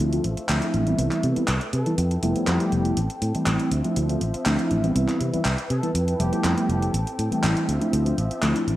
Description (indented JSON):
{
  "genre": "filtered disco house",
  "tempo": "121 BPM",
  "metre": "4/4",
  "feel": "straight",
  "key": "unclear",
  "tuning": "A4 = 439 Hz",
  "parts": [
    { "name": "mellow tine electric piano", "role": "accompaniment", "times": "0.0-8.8 s", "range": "E3 to F4", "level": "-25 LUFS", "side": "equal", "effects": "phaser, low-pass filter, cassette tape" },
    { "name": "rich symphonic string section", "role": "sustained chords", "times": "0.0-8.8 s", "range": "F3 to G5", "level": "-31 LUFS", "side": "equal", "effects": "low-pass filter, cassette tape" },
    { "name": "fingered electric bass", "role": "bass", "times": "0.0-8.8 s", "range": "F1 to C3", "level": "-24 LUFS", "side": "equal", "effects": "low-pass filter" },
    { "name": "house drum kit", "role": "drums", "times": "0.0-8.8 s", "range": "handclaps, hi-hat", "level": "-30 LUFS", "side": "equal", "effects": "none" },
    { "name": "clear trumpet section", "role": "melody", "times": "1.7-6.9 s", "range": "G4 to A4", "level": "-36 LUFS", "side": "equal", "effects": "vintage 12-bit sampler grit, low-pass filter, cassette tape, tape echo" }
  ],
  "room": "light reverb",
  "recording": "home recording on cassette",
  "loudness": "-21 LUFS",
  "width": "side -14 dB against mid",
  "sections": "0.0-8.8 A section",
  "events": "filter sweep 0.0-8.8",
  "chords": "0.0 Dm9; 1.0 Cmaj7; 2.0 Fmaj9#11; 3.0 Am7; 3.7 Dm9; 5.0 Cmaj7; 5.9 Fmaj9#11; 6.9 Am7; 7.7 Dm9"
}